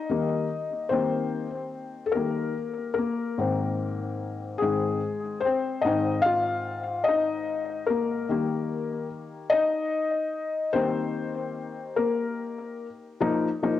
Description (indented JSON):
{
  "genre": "pop",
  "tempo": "49 BPM (dotted quarters)",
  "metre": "6/8",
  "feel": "straight",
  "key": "unclear",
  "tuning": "A4 = 440 Hz",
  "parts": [
    { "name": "felt-muted upright piano", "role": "solo", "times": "0.0-13.8 s", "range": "Ab2 to F5", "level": "-25 LUFS", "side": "left 3 dB", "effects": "analog delay" }
  ],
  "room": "wet spring reverb, RT60 1.6 s, small room ambience",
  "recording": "home recording on cassette",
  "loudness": "-25 LUFS",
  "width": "side -12 dB against mid",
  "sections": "0.0-13.2 A section",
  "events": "felt piano solo 0.0-13.2",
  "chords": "0.0 Eb; 3.4 Ab; 8.3 Eb; 13.2 Ebsus2"
}